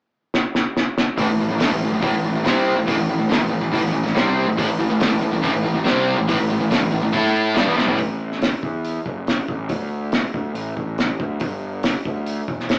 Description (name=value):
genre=classic rock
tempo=141 BPM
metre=4/4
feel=straight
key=A minor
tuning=A4 = 438 Hz
part: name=cloth-damped thuddy drum kit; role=drums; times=0.3-12.8 s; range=hi-hat, kick drum, snare drum, toms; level=-25 LUFS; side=equal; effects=none
part: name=crunchy overdriven guitar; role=riff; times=1.2-8.0 s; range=A2 to A4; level=-26 LUFS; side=equal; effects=spring reverb
part: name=distorted electric guitar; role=riff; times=1.2-8.0 s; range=A2 to A4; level=-24 LUFS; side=equal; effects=distortion
part: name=fuzz picked electric bass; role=bass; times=1.2-12.8 s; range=E1 to A2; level=-29 LUFS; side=equal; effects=overdrive
part: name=sludgy distorted guitar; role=riff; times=4.6-8.0 s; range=A2 to A4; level=-27 LUFS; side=equal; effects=overdrive
room=moderate small room reverb, RT60 0.5 s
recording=rough rehearsal-room recording, small speaker sound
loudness=-21 LUFS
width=mono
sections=0.0-1.2 A section; 1.2-8.0 B section; 8.0-12.8 C section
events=drum fill 0.3-1.2, 7.8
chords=0.0 N.C.; 1.2 Am; 8.0 A5; 9.7 D5; 11.4 G5